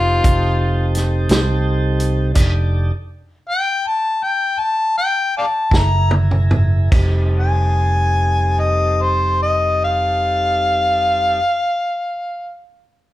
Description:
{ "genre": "slow blues", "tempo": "49-57 BPM (dotted quarters)", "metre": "12/8", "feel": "straight", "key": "F mixolydian", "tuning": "A4 = 439 Hz", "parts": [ { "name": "mellow harmonica", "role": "melody", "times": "0.0-12.6 s", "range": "F4 to Bb5", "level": "-17 LUFS", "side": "left 2 dB", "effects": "overdrive" }, { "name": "tonewheel organ", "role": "sustained chords", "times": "0.0-11.4 s", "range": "G3 to Bb4", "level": "-25 LUFS", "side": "right 1 dB", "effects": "slow rotary speaker" }, { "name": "fingered electric bass", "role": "bass", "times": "0.0-11.4 s", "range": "F1 to C2", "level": "-17 LUFS", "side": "right 1 dB", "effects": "none" }, { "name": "warm soul drum kit", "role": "drums", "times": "0.2-7.1 s", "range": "crash cymbal, hi-hat, kick drum, snare drum, toms", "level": "-17 LUFS", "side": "right 1 dB", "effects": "none" } ], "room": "light reverb", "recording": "band playing live in one room", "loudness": "-15 LUFS", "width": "side -15 dB against mid", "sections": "0.0-6.9 A section; 6.9-11.8 B section", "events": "slowing down 0.9-6.9; stop 2.4-5.7; drum fill 5.7-6.9", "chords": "0.0 F9; 2.4 F13; 5.7 Gb9; 6.9 F9", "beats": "0.24 1.30 | 2.36 3.44 4.56 5.71 | 6.92 8.15 9.38 10.61" }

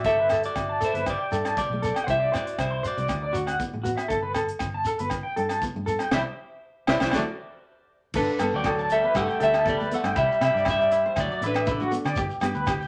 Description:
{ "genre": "highlife guitar band", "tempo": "119 BPM", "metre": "4/4", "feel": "straight", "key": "G major", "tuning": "A4 = 440 Hz", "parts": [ { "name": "clean electric guitar", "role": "melody", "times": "0.0-12.1 s", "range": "D4 to F#5", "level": "-27 LUFS", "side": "equal", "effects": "spring reverb" }, { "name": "fingerpicked steel-string acoustic guitar", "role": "accompaniment", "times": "0.0-12.6 s", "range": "F#3 to E4", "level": "-37 LUFS", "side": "equal", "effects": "none" }, { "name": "electric guitar through a small old amp", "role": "arpeggios", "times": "0.0-12.9 s", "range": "E4 to C6", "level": "-31 LUFS", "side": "equal", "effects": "tremolo" }, { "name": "fingered electric bass", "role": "bass", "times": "0.0-12.9 s", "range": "G1 to D3", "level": "-36 LUFS", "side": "equal", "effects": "none" }, { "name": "tight funk drum kit", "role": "drums", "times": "0.0-12.8 s", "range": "crash cymbal, hi-hat, kick drum, rim click, snare drum", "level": "-35 LUFS", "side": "equal", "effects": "none" }, { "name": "shekere", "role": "percussion", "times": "0.1-12.9 s", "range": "none", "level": "-40 LUFS", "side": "equal", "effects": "none" }, { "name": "agogo bells", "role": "percussion", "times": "0.3-12.8 s", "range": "none", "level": "-35 LUFS", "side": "equal", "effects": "none" }, { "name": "brilliant trombone", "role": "second line", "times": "8.2-12.0 s", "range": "D3 to A3", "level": "-38 LUFS", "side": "equal", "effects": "none" } ], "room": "wet small room reverb, RT60 0.5 s", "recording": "none", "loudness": "-25 LUFS", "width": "mono", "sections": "0.0-8.2 A section; 8.2-12.9 B section", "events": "band accent 6.1-8.2", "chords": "0.1 Gadd9; 2.1 Cadd9; 3.1 D; 4.1 Gadd9; 6.1 Cadd9; 7.1 D; 8.2 Gadd9; 10.2 Cadd9; 11.2 Dadd9; 12.2 G", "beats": "| 0.05 0.56 1.07 1.57 | 2.08 2.59 3.09 3.60 | 4.11 4.61 5.12 5.62 | 6.13 6.63 7.14 7.64 | 8.15 8.65 9.16 9.66 | 10.17 10.67 11.17 11.68 | 12.18 12.68" }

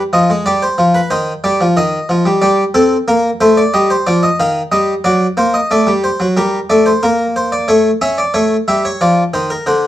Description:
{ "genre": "classical, baroque-style two-part invention for harpsichord", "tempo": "91 BPM", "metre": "4/4", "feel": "straight", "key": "C minor", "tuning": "A4 = 440 Hz", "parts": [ { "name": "harpsichord", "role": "solo", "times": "0.1-9.9 s", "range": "D3 to F5", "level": "-11 LUFS", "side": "equal", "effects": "none" } ], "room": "light reverb", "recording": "dark, warm production", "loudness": "-11 LUFS", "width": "side -13 dB against mid", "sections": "0.0-7.7 A section; 7.7-9.9 B section", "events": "none", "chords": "0.0 G7; 1.1 Cm/Eb; 2.4 Gm; 3.7 Cm; 5.1 D7/F#; 6.4 Gm; 7.7 A7; 9.0 Dm", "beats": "0.46 1.11 1.77 | 2.42 3.08 3.74 4.40 | 5.05 5.71 6.37 7.03 | 7.70 8.36 9.01 9.67" }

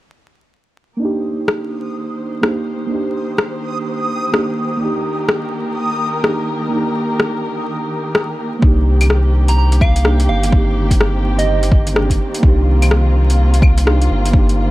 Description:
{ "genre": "future garage", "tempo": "126 BPM", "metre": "4/4", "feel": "swing 61% on 16ths", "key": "C minor", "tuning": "A4 = 440 Hz", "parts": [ { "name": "muted felt-like synth keys", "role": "accompaniment", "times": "1.0-14.7 s", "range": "Bb3 to G4", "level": "-21 LUFS", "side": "right 2 dB", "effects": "chorus, sidechain pumping, low-pass filter, tape echo" }, { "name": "dark chamber string section", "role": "sustained chords", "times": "1.0-14.7 s", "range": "Eb3 to C5", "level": "-24 LUFS", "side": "left 1 dB", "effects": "sidechain pumping" }, { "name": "backwards swelling texture", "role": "texture", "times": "1.9-8.6 s", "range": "Eb6", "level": "-26 LUFS", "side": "right 1 dB", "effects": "built-in reverb" }, { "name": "deep house drum kit", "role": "drums", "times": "1.5-14.6 s", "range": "claves, hi-hat, rim click", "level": "-18 LUFS", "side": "left 1 dB", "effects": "overdrive" }, { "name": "warm sub bass", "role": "bass", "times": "8.6-14.7 s", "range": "G1 to C2", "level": "-14 LUFS", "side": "equal", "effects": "sidechain pumping" }, { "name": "electronic kick drum", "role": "drums", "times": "8.6-14.5 s", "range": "none", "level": "-13 LUFS", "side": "equal", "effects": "overdrive" }, { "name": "soft synth bell", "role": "melody", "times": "9.5-11.9 s", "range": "Eb5 to Bb5", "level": "-24 LUFS", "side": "right 4 dB", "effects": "chorus, phaser, tape echo" } ], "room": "little or no reverb", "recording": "dark, warm production, vinyl crackle", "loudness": "-14 LUFS", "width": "side -17 dB against mid", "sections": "1.0-8.6 A section; 8.6-14.7 B section", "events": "fade-in on string section 1.0-8.6; filter sweep on synth keys 1.0-8.6, 8.6-14.7", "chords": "1.0 Cm7", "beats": "| 1.00 1.48 1.96 2.43 | 2.91 3.39 3.86 4.34 | 4.81 5.29 5.77 6.24 | 6.72 7.20 7.67 8.15 | 8.62 9.10 9.58 10.05 | 10.53 11.01 11.48 11.96 | 12.43 12.91 13.39 13.86 | 14.34" }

